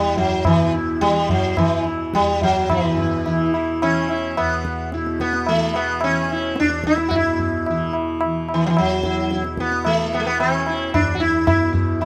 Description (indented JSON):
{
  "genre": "indian classical, Hindustani",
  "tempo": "109 BPM",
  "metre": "4/4",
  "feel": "straight",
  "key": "E raga kafi",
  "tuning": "A4 = 436 Hz",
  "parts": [
    { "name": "sitar", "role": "melody", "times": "0.0-12.1 s", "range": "E3 to F#4", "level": "-22 LUFS", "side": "equal", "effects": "none" },
    { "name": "tanpura", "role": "drone", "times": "0.0-12.1 s", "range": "E2 to E3", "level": "-29 LUFS", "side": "equal", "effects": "none" },
    { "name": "tabla", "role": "percussion", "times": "0.2-12.1 s", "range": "none", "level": "-26 LUFS", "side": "equal", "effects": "none" }
  ],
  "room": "light reverb",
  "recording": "none",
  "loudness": "-20 LUFS",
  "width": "mono",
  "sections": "0.0-2.7 A section; 2.7-12.1 B section",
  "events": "speeding up 0.0-12.1",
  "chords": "none"
}